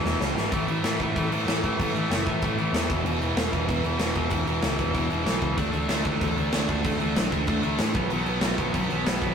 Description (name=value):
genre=punk rock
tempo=190 BPM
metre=4/4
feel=straight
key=unclear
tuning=A4 = 436 Hz
part: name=tight distorted guitar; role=riff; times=0.0-9.3 s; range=E2 to D4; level=-27 LUFS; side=equal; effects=distortion
part: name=growling picked electric bass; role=bass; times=0.0-9.3 s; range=E1 to A2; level=-30 LUFS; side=equal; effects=overdrive
part: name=big rock drum kit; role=drums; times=0.1-9.3 s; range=crash cymbal, kick drum, snare drum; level=-27 LUFS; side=equal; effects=none
room=light reverb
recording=rough rehearsal-room recording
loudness=-23 LUFS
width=side -7 dB against mid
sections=0.5-9.3 A section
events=drum fill 0.0-0.5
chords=0.0 E; 0.5 A5; 2.9 E5; 5.6 D5; 8.0 B5